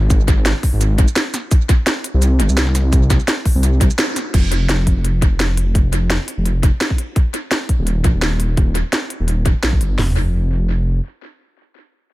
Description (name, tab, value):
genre	liquid drum and bass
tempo	170 BPM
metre	4/4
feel	swing 54% on 16ths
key	unclear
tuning	A4 = 440 Hz
part	dark detuned saw bass	bass	0.0-11.0 s	Eb1 to C2	-16 LUFS	equal	none
part	drum and bass drum kit	drums	0.1-10.1 s	hi-hat, kick drum, snare drum, toms	-14 LUFS	equal	none
part	drum and bass drum kit	drums	0.1-9.9 s	crash cymbal, hi-hat, shaker, snare drum	-21 LUFS	equal	tape echo
room	little or no reverb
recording	echo-heavy mix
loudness	-14 LUFS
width	side -18 dB against mid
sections	0.0-4.3 A section; 4.3-10.0 B section; 10.0-12.1 C section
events	drop 0.0-4.3; break 4.0-4.3; band accent 4.0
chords	none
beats	| 0.10 0.46 0.81 1.16 | 1.51 1.87 2.22 2.57 | 2.93 3.28 3.63 3.98 | 4.34 4.69 5.04 5.40 | 5.75 6.10 6.46 6.81 | 7.16 7.51 7.87 8.22 | 8.57 8.93 9.28 9.63 | 9.98 10.34 10.69